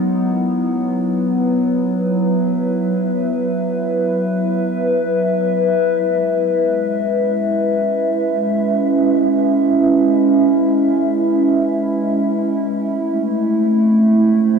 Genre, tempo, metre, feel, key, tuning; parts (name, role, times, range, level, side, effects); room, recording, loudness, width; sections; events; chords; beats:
ambient; free time; C# minor; A4 = 441 Hz
warbly tape-like pad; solo; 0.0-14.6 s; F#3 to E5; -14 LUFS; equal; chorus, built-in reverb, tape echo
wet huge ambient reverb, RT60 7.5 s; -15 LUFS; side -6 dB against mid
0.0-6.0 A section; 6.0-14.6 B section
0.0 Esus2; 6.0 C#m7; 12.9 Am
free time